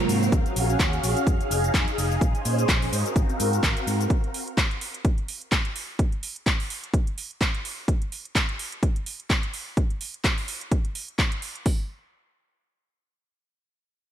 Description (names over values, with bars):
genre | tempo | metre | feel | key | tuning
filtered disco house | 127 BPM | 4/4 | swing 56% on 16ths | unclear | A4 = 440 Hz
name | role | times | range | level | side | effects
phased string machine | sustained chords | 0.0-4.1 s | Gb3 to F5 | -27 LUFS | equal | ensemble chorus, phaser, vintage 12-bit sampler grit, sidechain pumping, low-pass filter
fingered electric bass | bass | 0.1-4.1 s | F1 to Bb2 | -26 LUFS | equal | sidechain pumping, low-pass filter
house drum kit | drums | 0.1-11.6 s | handclaps, hi-hat, shaker | -28 LUFS | equal | sidechain pumping on hats, studio ambience, sidechain pumping on perc
house drum kit | drums | 0.3-11.8 s | hi-hat, kick drum | -23 LUFS | equal | studio ambience
room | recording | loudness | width
light reverb | none | -23 LUFS | side -10 dB against mid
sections
0.0-11.7 A section; 11.7-14.1 B section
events
none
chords
0.3 Ebm11; 1.3 Fm7; 2.2 Bbm11; 2.9 Ab13; 4.1 N.C.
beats
| 0.32 0.80 1.27 1.74 | 2.21 2.69 3.16 3.63 | 4.10 4.58 5.05 5.52 | 5.99 6.46 6.94 7.41 | 7.88 8.35 8.83 9.30 | 9.77 10.24 10.72 11.19 | 11.66